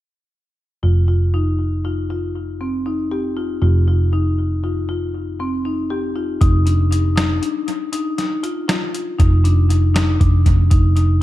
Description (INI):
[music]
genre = progressive instrumental, band music in an uneven meter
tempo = 237 BPM (eighths)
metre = 11/8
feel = straight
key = unclear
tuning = A4 = 440 Hz
[part]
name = marimba with medium mallets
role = arpeggios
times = 0.8-11.1 s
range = C4 to G4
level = -22 LUFS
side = left 3 dB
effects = analog delay
[part]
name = hollow-body short-scale picked electric bass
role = bass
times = 0.8-11.2 s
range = F1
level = -16 LUFS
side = equal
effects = none
[part]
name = boom bap sampler-style drum kit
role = drums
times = 6.4-11.1 s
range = hi-hat, kick drum, snare drum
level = -19 LUFS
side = equal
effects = analog delay
[sound]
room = little or no reverb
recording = echo-heavy mix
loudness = -16 LUFS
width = side -15 dB against mid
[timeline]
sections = 0.8-6.4 A section; 6.4-11.2 B section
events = none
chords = 0.8 F5; 6.4 Dm/F